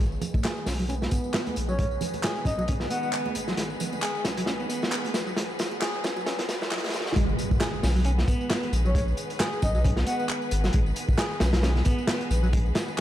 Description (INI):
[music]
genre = breakbeat, breaks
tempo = 134 BPM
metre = 4/4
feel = swing 56% on 16ths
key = G# minor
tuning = A4 = 439 Hz
[part]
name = rich studio string section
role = sustained chords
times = 0.0-13.0 s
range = D#3 to B4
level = -35 LUFS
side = left 1 dB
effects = sidechain pumping, low-pass filter
[part]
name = semi-hollow electric guitar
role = riff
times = 0.0-13.0 s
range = F#3 to G#4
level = -32 LUFS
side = equal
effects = tube saturation, vintage 12-bit sampler grit, low-pass filter, ping-pong delay
[part]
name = saturated sub bass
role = bass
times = 0.0-12.7 s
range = G#1 to B1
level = -26 LUFS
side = equal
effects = none
[part]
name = riser and impact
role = sound effects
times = 2.1-8.9 s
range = none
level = -37 LUFS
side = right 1 dB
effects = none
[part]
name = electronic tambourine and handclaps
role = drums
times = 0.1-13.0 s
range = none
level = -37 LUFS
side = left 1 dB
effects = none
[part]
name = crunchy breakbeat drum kit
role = drums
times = 0.2-13.0 s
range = hi-hat, kick drum, snare drum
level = -27 LUFS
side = equal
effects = none
[part]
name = congas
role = percussion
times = 0.2-6.9 s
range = none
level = -38 LUFS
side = right 5 dB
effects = none
[part]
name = breathy flute-like synth lead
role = melody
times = 1.7-3.1, 8.9-10.3 s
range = C#5 to F#5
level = -32 LUFS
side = left 1 dB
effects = chorus, small speaker sound, ping-pong delay
[sound]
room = light reverb, small room ambience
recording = dark, warm production, high-pass filter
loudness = -24 LUFS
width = side -12 dB against mid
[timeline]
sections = 0.0-7.2 A section; 7.2-13.0 B section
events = build-up 0.0-7.2; filter sweep on clean electric guitar 0.0-7.2; filter sweep on string section 0.0-7.2; filter sweep 0.0-7.2; drum fill 3.6-7.2; drop 7.2-13.0; impact 7.2-8.9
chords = 0.0 G#m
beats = 0.44 0.89 1.34 | 1.79 2.23 2.68 3.13 | 3.58 4.02 4.47 4.92 | 5.37 5.82 6.26 6.71 | 7.16 7.61 8.05 8.50 | 8.95 9.40 9.85 10.29 | 10.74 11.19 11.64 12.08 | 12.53 12.98